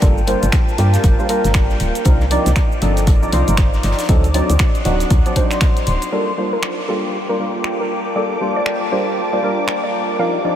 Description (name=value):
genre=deep house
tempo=118 BPM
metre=4/4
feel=swing 60% on 16ths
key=G minor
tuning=A4 = 438 Hz
part: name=percussive organ stab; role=stabs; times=0.0-10.6 s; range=F3 to D5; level=-20 LUFS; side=equal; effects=ensemble chorus, sidechain pumping, tape echo
part: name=woody FM bass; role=bass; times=0.0-6.0 s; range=D1 to G2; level=-17 LUFS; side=equal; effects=sidechain pumping
part: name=electronic kick drum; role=drums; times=0.0-5.7 s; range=none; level=-15 LUFS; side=equal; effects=none
part: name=punchy analog drum machine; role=drums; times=0.0-9.8 s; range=finger snaps, hi-hat, shaker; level=-26 LUFS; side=equal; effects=none
part: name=warm soul drum kit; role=drums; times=0.0-5.9 s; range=hi-hat, snare drum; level=-36 LUFS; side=left 3 dB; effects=none
part: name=airy breathy pad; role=texture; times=0.0-10.6 s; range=Eb4 to C6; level=-25 LUFS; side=equal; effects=chorus, phaser, sidechain pumping
part: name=soft round pluck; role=melody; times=6.1-10.4 s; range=A4 to F5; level=-24 LUFS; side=left 1 dB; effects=lush chorus, tape echo
part: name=soft string machine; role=texture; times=6.8-10.6 s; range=D6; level=-28 LUFS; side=left 2 dB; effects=phaser, ensemble chorus
room=moderate huge ambient reverb, RT60 8.3 s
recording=dreamy mix soaked in reverb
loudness=-14 LUFS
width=side -10 dB against mid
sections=0.0-6.1 A section; 6.1-10.6 B section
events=none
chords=0.0 Gm9; 2.1 Cm11; 4.1 D7b9; 6.1 Gm9